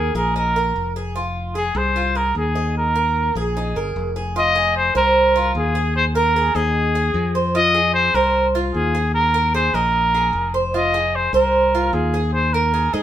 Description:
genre	latin, Cuban son and guajira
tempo	150 BPM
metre	4/4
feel	straight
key	F minor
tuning	A4 = 440 Hz
part	breathy trumpet	melody	0.0-13.0 s	Ab4 to Eb5	-19 LUFS	equal	none
part	Cuban tres	arpeggios	0.0-13.0 s	Eb4 to Eb5	-22 LUFS	right 2 dB	none
part	modern bright fingered electric bass	bass	0.0-13.0 s	F1 to Ab2	-23 LUFS	left 1 dB	none
room	moderate studio reverb, RT60 0.6 s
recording	band playing live in one room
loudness	-16 LUFS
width	side -11 dB against mid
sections	0.0-4.4 A section; 4.4-13.0 B section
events	none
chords	0.0 Ebsus4; 1.2 Fm7; 2.8 Ebsus4; 4.4 Fm7; 6.0 Ebsus4; 7.5 Fm7; 9.1 Ebsus4; 10.7 Fm7; 12.3 Ebsus4

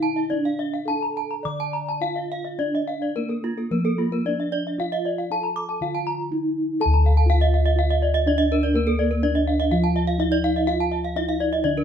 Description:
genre	Balinese gamelan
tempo	105-124 BPM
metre	4/4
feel	straight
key	D pelog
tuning	A4 = 440 Hz
part	gamelan-type bronze metallophone	melody	0.0-11.8 s	Bb3 to D5	-25 LUFS	right 1 dB	none
part	gamelan-type bronze metallophone	arpeggios	0.0-11.8 s	F4 to D6	-27 LUFS	left 4 dB	none
part	gamelan-type bronze metallophone	arpeggios	0.0-11.8 s	F4 to D6	-28 LUFS	right 8 dB	none
part	gamelan-type bossed gongs	bass	0.0-11.8 s	D2 to Bb4	-24 LUFS	left 1 dB	none
room	moderate studio reverb, RT60 0.8 s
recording	band playing live in one room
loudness	-20 LUFS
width	side -8 dB against mid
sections	0.0-6.8 A section; 6.8-11.8 B section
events	none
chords	none

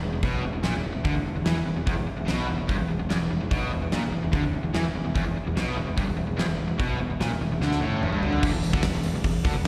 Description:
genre	hard rock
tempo	146 BPM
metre	4/4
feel	straight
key	unclear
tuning	A4 = 440 Hz
part	distorted electric guitar	riff	0.0-9.6 s	E2 to E3	-33 LUFS	equal	overdrive, slapback echo
part	raw garage guitar	riff	0.0-8.4 s	E2 to E3	-32 LUFS	equal	overdrive, slapback echo
part	growling picked electric bass	bass	0.0-9.6 s	E1 to E2	-32 LUFS	equal	overdrive
part	huge arena drum kit	drums	0.2-9.7 s	crash cymbal, hi-hat, kick drum, snare drum, toms	-32 LUFS	equal	none
room	little or no reverb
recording	live gig heard through the venue's PA, recital hall reverb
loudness	-26 LUFS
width	mono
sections	0.0-8.4 A section; 8.4-9.7 B section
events	drum fill 7.6-8.4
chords	0.0 E5

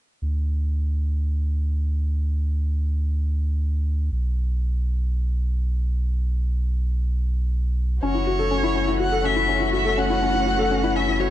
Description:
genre	piano and strings electronica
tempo	123 BPM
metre	4/4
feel	straight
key	unclear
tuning	A4 = 440 Hz
part	warm sub bass	bass	0.2-11.3 s	F#1 to D2	-22 LUFS	equal	none
part	rich violin	melody	8.0-11.3 s	C#5 to F#5	-24 LUFS	equal	none
part	rich studio string section	sustained chords	8.0-11.3 s	E3 to F#4	-28 LUFS	left 3 dB	none
part	felt-muted upright piano	riff	8.0-11.3 s	C#4 to A4	-23 LUFS	left 4 dB	none
room	light reverb, small room ambience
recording	dark, warm production, nothing above 11.0 kHz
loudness	-21 LUFS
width	side -13 dB against mid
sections	0.2-11.3 A section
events	none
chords	0.2 N.C.; 8.0 F#m7

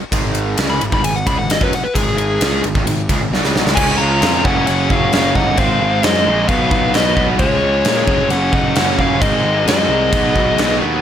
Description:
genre	hard rock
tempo	132 BPM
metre	4/4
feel	straight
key	unclear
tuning	A4 = 438 Hz
part	distorted electric guitar	riff	0.1-11.0 s	Gb2 to Db4	-21 LUFS	right 2 dB	overdrive
part	fuzz picked electric bass	bass	0.1-11.0 s	Gb1 to Bb2	-20 LUFS	equal	overdrive
part	gated 80s drum kit	drums	0.1-10.7 s	crash cymbal, kick drum, ride cymbal, snare drum	-18 LUFS	equal	none
part	dark smooth lead guitar	melody	0.7-10.8 s	Ab4 to Cb6	-18 LUFS	left 2 dB	overdrive, slapback echo
part	octave-fuzz lead guitar	second line	3.8-10.8 s	Ab3 to F4	-24 LUFS	right 2 dB	distortion, slapback echo
part	tight distorted guitar	riff	3.8-11.0 s	Gb2 to Eb4	-22 LUFS	left 1 dB	distortion
room	light reverb, studio reverb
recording	none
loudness	-13 LUFS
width	side -9 dB against mid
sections	0.0-3.8 A section; 3.8-11.0 B section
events	lead electric guitar solo 0.0-3.8; drum fill 3.3-3.8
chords	0.0 Ab5; 3.8 Db; 4.4 Gb; 5.6 Ab; 6.5 B; 7.4 Db; 8.1 Gb; 9.2 Ab; 10.1 B

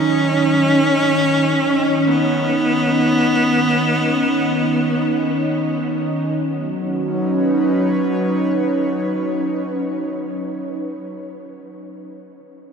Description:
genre	ambient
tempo	free time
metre	none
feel	none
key	B major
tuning	A4 = 441 Hz
part	clear cello	melody	0.0-5.8 s	B3 to C#4	-18 LUFS	equal	diffuse ambient delay
part	airy breathy pad	sustained chords	0.0-11.1 s	D#3 to D#5	-19 LUFS	equal	chorus
room	wet huge ambient reverb, RT60 8.2 s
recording	none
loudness	-16 LUFS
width	side -6 dB against mid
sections	0.0-6.4 A section; 6.4-10.7 B section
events	none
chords	0.0 Badd9

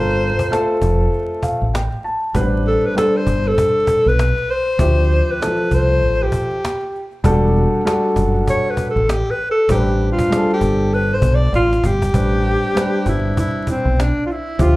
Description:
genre	hip hop, jazz-hop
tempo	98 BPM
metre	4/4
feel	swing 61% on 16ths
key	A minor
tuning	A4 = 440 Hz
part	breathy alto saxophone	melody	0.0-14.8 s	C4 to D5	-18 LUFS	left 1 dB	none
part	dark concert grand piano	accompaniment	0.0-14.8 s	E3 to A5	-20 LUFS	equal	none
part	deep dub fingered electric bass	bass	0.0-14.8 s	E1 to D2	-17 LUFS	equal	none
part	cajon	drums	0.1-14.8 s	none	-24 LUFS	equal	none
room	light reverb, small room reverb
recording	live gig heard through the venue's PA, club reverb, vinyl crackle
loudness	-15 LUFS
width	side -19 dB against mid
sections	0.0-12.1 A section; 12.1-14.8 B section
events	alto saxophone solo 0.0-12.1; grand piano fill 1.1-2.3; drum fill 11.5-12.1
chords	0.0 Gm11; 2.3 Am11; 4.8 Dm11; 7.2 Em11; 9.7 Am11

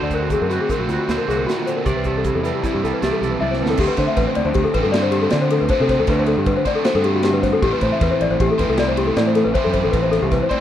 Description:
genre	math rock and midwest emo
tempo	156 BPM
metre	5/4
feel	straight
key	unclear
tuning	A4 = 440 Hz
part	twangy electric guitar	accompaniment	0.0-3.8 s	A#2 to D5	-27 LUFS	right 8 dB	analog chorus
part	small celesta	arpeggios	0.0-10.6 s	E4 to E5	-20 LUFS	left 4 dB	none
part	crunchy overdriven guitar	riff	0.0-10.6 s	A2 to C5	-22 LUFS	right 2 dB	none
part	growling fingered electric bass	bass	0.0-10.4 s	A1 to D3	-23 LUFS	right 1 dB	overdrive
part	modern studio drum kit	drums	0.1-10.6 s	crash cymbal, hi-hat, kick drum, ride cymbal, snare drum, toms	-25 LUFS	right 1 dB	none
room	light reverb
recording	rough home demo mix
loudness	-16 LUFS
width	side -10 dB against mid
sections	0.0-3.8 A section; 3.8-10.6 B section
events	drum fill 3.4-3.8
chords	0.0 D7b13; 1.9 C69; 3.8 Am9

